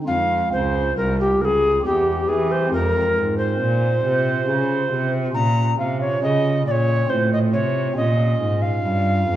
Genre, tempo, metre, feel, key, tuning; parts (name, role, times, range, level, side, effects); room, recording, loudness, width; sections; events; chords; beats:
classical, baroque-style sonata movement with continuo; 68 BPM; 3/4; straight; F minor; A4 = 439 Hz
pipe organ, stopped flute; accompaniment; 0.0-9.4 s; C2 to G4; -25 LUFS; right 1 dB
rich cello; bass; 0.0-9.4 s; C2 to E3; -22 LUFS; right 1 dB
tenor recorder; melody; 0.1-9.4 s; G4 to Bb5; -21 LUFS; equal
wet recital hall reverb, RT60 1.7 s; worn, warbling old tape, cassette tape, warbly pitch drift, small room ambience; -18 LUFS; side -12 dB against mid
0.1-9.4 A section
0.1 Fm; 1.8 C/E; 2.7 Fm; 5.4 Bbm; 7.1 F/A; 8.0 Bbm
| 0.07 0.97 1.85 | 2.73 3.60 4.48 | 5.35 6.22 7.10 | 7.97 8.85